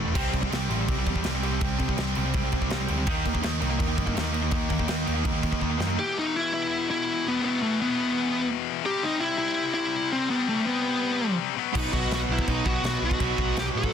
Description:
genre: heavy metal.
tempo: 165 BPM.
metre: 4/4.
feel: straight.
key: E harmonic minor.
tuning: A4 = 441 Hz.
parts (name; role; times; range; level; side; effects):
distorted electric guitar; riff; 0.0-6.0, 11.7-13.9 s; A2 to D#4; -32 LUFS; right 14 dB; distortion.
distorted electric guitar; riff; 0.0-6.0, 11.7-13.9 s; A2 to D#4; -31 LUFS; right 1 dB; overdrive.
heavy high-gain guitar; riff; 0.0-13.9 s; E2 to D#4; -30 LUFS; left 14 dB; distortion.
picked electric bass; bass; 0.0-6.0, 11.8-13.9 s; E1 to A2; -30 LUFS; equal; none.
modern studio drum kit; drums; 0.2-5.9, 11.8-13.9 s; china cymbal, crash cymbal, kick drum, snare drum; -29 LUFS; equal; none.
high-gain lead guitar; melody; 6.0-13.9 s; A3 to A4; -26 LUFS; equal; distortion.
high-gain lead guitar; second line; 11.8-13.9 s; B4 to F#5; -38 LUFS; right 1 dB; distortion.
room: studio reverb.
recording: dense, heavily limited modern master.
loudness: -24 LUFS.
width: side -8 dB against mid.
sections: 0.0-6.0 A section; 6.0-13.9 B section.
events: drum fill 0.0, 5.6-6.0.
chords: 0.2 C5; 3.1 D#5; 6.0 E5; 8.8 C; 11.6 B.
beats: | 0.15 0.52 0.88 1.25 | 1.61 1.98 2.34 2.71 | 3.07 3.43 3.80 4.16 | 4.52 4.88 5.25 5.61 | 5.97 6.33 6.69 7.05 | 7.41 7.77 8.13 8.49 | 8.85 9.21 9.57 9.93 | 10.29 10.65 11.02 11.38 | 11.74 12.11 12.47 12.84 | 13.20 13.57.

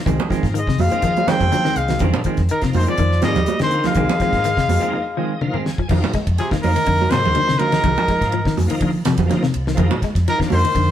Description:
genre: afrobeat.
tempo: 124 BPM.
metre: 4/4.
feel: swing 53% on 16ths.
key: F dorian.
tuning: A4 = 440 Hz.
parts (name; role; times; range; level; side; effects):
bright tonewheel organ; accompaniment; 0.0-10.6 s; F3 to Ab5; -29 LUFS; left 1 dB; slow rotary speaker, overdrive, chorus vibrato.
semi-hollow electric guitar; arpeggios; 0.1-10.9 s; C3 to Ab3; -24 LUFS; left 6 dB; none.
semi-hollow electric guitar; stabs; 0.1-5.7 s; Eb3 to C4; -26 LUFS; right 5 dB; none.
fingered electric bass; bass; 0.1-10.9 s; C2 to F3; -21 LUFS; equal; none.
damped 70s drum kit; drums; 0.1-10.9 s; crash cymbal, hi-hat, kick drum, ride cymbal, snare drum, toms; -24 LUFS; equal; none.
congas; percussion; 0.1-10.6 s; none; -24 LUFS; right 5 dB; none.
clear trumpet; melody; 0.6-10.9 s; Ab4 to G5; -20 LUFS; left 1 dB; none.
raspy tenor saxophone; second line; 0.6-10.9 s; C3 to C4; -28 LUFS; right 1 dB; none.
room: moderate stone room reverb, RT60 1.0 s.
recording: band playing live in one room.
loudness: -16 LUFS.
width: side -10 dB against mid.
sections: 0.0-5.9 A section; 5.9-10.9 A section.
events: break 4.9-5.9; tonewheel organ fill 4.9-5.9; drum fill 5.4-5.9.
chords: 0.0 Fm7.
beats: | 0.07 0.56 1.04 1.53 | 2.01 2.50 2.98 3.47 | 3.96 4.44 4.93 5.42 | 5.90 6.39 6.87 7.36 | 7.84 8.33 8.81 9.30 | 9.78 10.27 10.75.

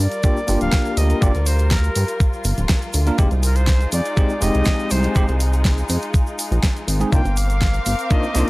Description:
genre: nu-disco, nu disco.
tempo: 122 BPM.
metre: 4/4.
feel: straight.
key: F dorian.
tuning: A4 = 438 Hz.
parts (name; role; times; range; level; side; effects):
bright reedy silver concert flute; melody; 0.0-8.5 s; Bb4 to G5; -27 LUFS; equal; analog delay.
muted studio string section; sustained chords; 0.0-8.5 s; G3 to D6; -29 LUFS; left 2 dB; sidechain pumping.
chorused synth bass; bass; 0.0-8.4 s; D1 to G2; -18 LUFS; equal; sidechain pumping.
pop drum kit; drums; 0.1-8.5 s; hi-hat, snare drum; -26 LUFS; equal; none.
tube shaker; percussion; 0.1-8.5 s; none; -33 LUFS; right 3 dB; none.
bell-like tine electric piano; accompaniment; 0.2-8.5 s; Ab3 to Bb4; -23 LUFS; equal; medium stereo tremolo, sidechain pumping, low-pass filter.
electronic kick drum; drums; 0.2-8.2 s; none; -17 LUFS; equal; none.
room: digital ambience.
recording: dry, gritty hardware recording, transformer saturation.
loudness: -16 LUFS.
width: side -21 dB against mid.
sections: 0.0-8.5 A section.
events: filter sweep on tine electric piano 0.0-8.5.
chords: 0.0 Gm7; 3.2 Fm9; 7.1 Cm11.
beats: 0.24 0.73 | 1.22 1.71 2.21 2.70 | 3.19 3.68 4.17 4.67 | 5.16 5.65 6.14 6.63 | 7.12 7.62 8.11.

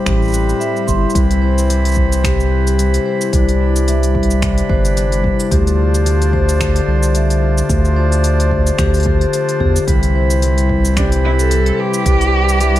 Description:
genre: folktronica.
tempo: 110 BPM.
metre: 4/4.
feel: swing 56% on 16ths.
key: C major.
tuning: A4 = 441 Hz.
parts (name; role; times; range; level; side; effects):
vibraphone with medium mallets; second line; 0.0-12.8 s; G4 to C6; -20 LUFS; left 2 dB; digital delay.
hand-pumped harmonium; sustained chords; 0.0-12.8 s; E3 to B5; -23 LUFS; right 1 dB; none.
concert harp; arpeggios; 0.0-12.8 s; A2 to C5; -21 LUFS; left 4 dB; digital delay.
round analog bass; bass; 0.1-12.8 s; G1 to E2; -15 LUFS; right 1 dB; none.
electronic kick drum; drums; 0.1-12.2 s; none; -19 LUFS; right 1 dB; none.
organic electronic drum kit; drums; 0.1-12.8 s; finger snaps, hi-hat, shaker; -25 LUFS; equal; none.
warm cello; melody; 11.0-12.8 s; D4 to A4; -18 LUFS; right 1 dB; vintage 12-bit sampler grit.
room: little or no reverb.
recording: none.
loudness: -12 LUFS.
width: side -14 dB against mid.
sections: 0.0-1.1 A section; 1.1-12.8 B section.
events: filter sweep on harp 0.0-1.1.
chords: 0.0 Am9; 1.1 Cmaj7; 5.5 Dm7; 9.9 Cmaj7.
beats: 0.06 0.60 | 1.15 1.70 2.24 2.79 | 3.33 3.88 4.42 4.97 | 5.51 6.06 6.60 7.15 | 7.70 8.24 8.79 9.33 | 9.88 10.42 10.97 11.51 | 12.06 12.60.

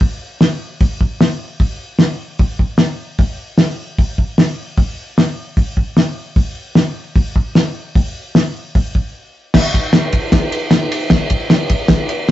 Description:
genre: rock.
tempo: 151 BPM.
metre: 4/4.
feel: straight.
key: none.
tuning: none.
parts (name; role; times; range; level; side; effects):
cloth-damped thuddy drum kit; drums; 0.0-12.3 s; crash cymbal, hi-hat, kick drum, ride cymbal, snare drum; -13 LUFS; equal; none.
room: moderate studio reverb, RT60 0.6 s.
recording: rough rehearsal-room recording, nothing above 7.9 kHz.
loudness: -14 LUFS.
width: side -13 dB against mid.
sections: 0.0-9.5 A section; 9.5-12.3 B section.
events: break 9.1-9.5.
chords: none.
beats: | 0.01 0.41 0.81 1.21 | 1.60 2.00 2.40 2.79 | 3.19 3.59 3.99 4.38 | 4.78 5.18 5.58 5.97 | 6.37 6.77 7.17 7.56 | 7.96 8.36 8.75 9.15 | 9.54 9.94 10.33 10.72 | 11.12 11.51 11.90 12.30.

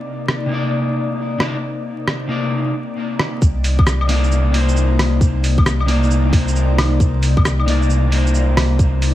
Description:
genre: future garage.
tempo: 134 BPM.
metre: 4/4.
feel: swing 65% on 16ths.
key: unclear.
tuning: A4 = 439 Hz.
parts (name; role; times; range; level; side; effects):
ethereal airy pad; sustained chords; 0.0-9.1 s; C3 to D5; -24 LUFS; left 1 dB; ensemble chorus, built-in reverb, phaser, sidechain pumping.
lo-fi sampler-style drum kit; drums; 0.3-9.1 s; claves, hi-hat, rim click, shaker; -21 LUFS; equal; overdrive, studio reverb.
electric guitar at the edge of break-up; accompaniment; 0.5-9.1 s; C3 to D5; -21 LUFS; left 2 dB; sidechain pumping, dub echo.
warm sub bass; bass; 3.4-9.1 s; C2; -16 LUFS; equal; sidechain pumping.
electronic kick drum; drums; 3.4-8.9 s; none; -14 LUFS; equal; studio reverb.
room: light reverb.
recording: vinyl crackle.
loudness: -15 LUFS.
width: side -14 dB against mid.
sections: 0.0-3.4 A section; 3.4-9.1 B section.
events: filter sweep on ambient pad 0.0-3.4.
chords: 0.0 Cm9.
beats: 0.28 0.73 1.18 | 1.63 2.08 2.52 2.97 | 3.42 3.87 4.31 4.76 | 5.21 5.66 6.11 6.55 | 7.00 7.45 7.90 8.34 | 8.79.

